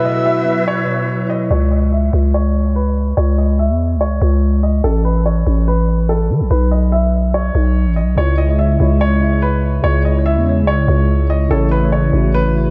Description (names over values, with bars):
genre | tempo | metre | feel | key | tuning
hip hop | 144 BPM | 4/4 | half-time | C# minor | A4 = 441 Hz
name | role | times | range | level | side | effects
warm upright piano | melody | 0.0-12.7 s | A4 to E5 | -23 LUFS | equal | low-pass filter, diffuse ambient delay
breathy flute-like synth lead | second line | 0.0-1.1 s | E5 | -25 LUFS | equal | chorus, diffuse ambient delay
mellow tine electric piano | accompaniment | 0.0-1.5, 8.2-12.7 s | B2 to E5 | -21 LUFS | equal | phaser, low-pass filter
breathy mellow flute section | sustained chords | 0.0-1.5 s | E4 to B4 | -26 LUFS | equal | none
growling 808-style bass | bass | 1.5-12.7 s | A1 to E3 | -16 LUFS | equal | none
room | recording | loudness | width
moderate church reverb, RT60 3.3 s | dreamy mix soaked in reverb, nothing above 8.0 kHz | -15 LUFS | mono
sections
0.0-1.5 A section; 1.5-12.7 B section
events
filter sweep 1.5-8.2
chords
0.0 Bsus4; 1.5 C#m; 4.8 A; 6.5 Bsus4; 8.2 C#m; 11.5 A